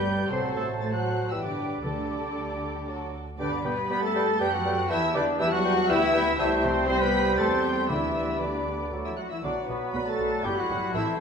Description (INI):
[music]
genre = quick classical-period movement for symphony orchestra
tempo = 119 BPM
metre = 3/4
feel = straight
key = G major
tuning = A4 = 438 Hz
[part]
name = muted studio violin section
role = melody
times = 0.0-11.0 s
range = A5 to C7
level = -36 LUFS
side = left 1 dB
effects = none
[part]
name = clear clarinet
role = second line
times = 0.0-11.2 s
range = E4 to D5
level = -36 LUFS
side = equal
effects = none
[part]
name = hollow silver concert flute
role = second line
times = 0.0-11.2 s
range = D5 to C6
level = -34 LUFS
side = equal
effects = none
[part]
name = muted studio violin section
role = second line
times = 0.0-11.2 s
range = F#4 to C6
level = -34 LUFS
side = left 2 dB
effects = none
[part]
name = warm oboe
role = second line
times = 0.0-11.2 s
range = A4 to A5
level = -36 LUFS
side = right 3 dB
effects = none
[part]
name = muted studio viola section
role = accompaniment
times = 0.0-11.0 s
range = G3 to B4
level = -34 LUFS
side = right 1 dB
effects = none
[part]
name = warm bassoon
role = accompaniment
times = 0.0-11.2 s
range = F#3 to A3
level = -34 LUFS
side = right 1 dB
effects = none
[part]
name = dark French horn section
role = sustained chords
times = 0.0-11.2 s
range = A3 to C5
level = -32 LUFS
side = left 3 dB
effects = none
[part]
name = muted studio cello section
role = bass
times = 0.0-11.2 s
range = A2 to C4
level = -34 LUFS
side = right 2 dB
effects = none
[part]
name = muted studio double bass section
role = bass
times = 0.0-11.0 s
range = G1 to G2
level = -36 LUFS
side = right 2 dB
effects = none
[part]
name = timpani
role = percussion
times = 1.8-2.6, 7.9-8.6 s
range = D3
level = -37 LUFS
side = equal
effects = none
[part]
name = mellow trumpet section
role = stabs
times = 3.4-11.1 s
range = B3 to C5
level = -30 LUFS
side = equal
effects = none
[sound]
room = wet recital hall reverb, RT60 1.5 s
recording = minimal, uncompressed stereo recording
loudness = -24 LUFS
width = side -6 dB against mid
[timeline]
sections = 0.0-3.4 A section; 3.4-11.2 B section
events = none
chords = 0.3 F#dim/A; 1.3 G; 1.8 Dsus4; 2.9 D; 3.4 G; 4.9 Em; 6.4 C; 7.9 G/D; 8.9 D; 9.4 Bm; 10.4 Em